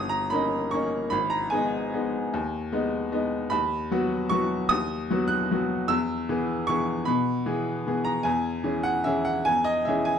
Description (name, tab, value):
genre	classical, piano waltz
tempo	151 BPM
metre	3/4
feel	uneven beats, rubato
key	G# minor, B major from 3.5 s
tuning	A4 = 440 Hz
part	bright upright piano	solo	0.0-10.2 s	G1 to F#6	-24 LUFS	equal	none
room	moderate large studio reverb, RT60 0.9 s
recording	dark, warm production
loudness	-24 LUFS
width	side -8 dB against mid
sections	0.0-10.2 A section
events	none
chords	0.0 D#7/G; 1.1 G#m; 3.5 B/D#; 5.9 E; 8.3 C#m/E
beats	0.32 0.74 | 1.13 1.53 1.94 | 2.35 2.73 3.12 | 3.52 3.92 4.32 | 4.72 5.11 5.51 | 5.90 6.28 6.69 | 7.08 7.46 7.87 | 8.26 8.65 9.06 | 9.46 9.86